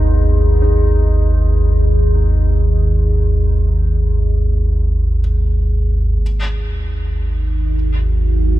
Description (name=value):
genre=ambient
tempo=free time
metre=none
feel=none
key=unclear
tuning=A4 = 439 Hz
part: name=dark concert grand piano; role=arpeggios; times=0.0-6.2 s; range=D#4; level=-30 LUFS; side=left 2 dB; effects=tape echo
part: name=deep rumbling drone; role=drone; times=0.0-8.6 s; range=G#1 to D#2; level=-13 LUFS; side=equal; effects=built-in reverb
part: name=bronze singing bowl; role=texture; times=0.0-6.2 s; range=G#4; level=-26 LUFS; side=left 5 dB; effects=none
part: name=deep dark ambient pad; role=sustained chords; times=6.9-8.6 s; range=D#4 to F#4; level=-26 LUFS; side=right 3 dB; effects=chorus, built-in reverb
room=small room ambience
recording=none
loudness=-13 LUFS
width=side -15 dB against mid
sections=0.0-6.2 A section; 6.2-8.6 B section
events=none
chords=0.0 G#5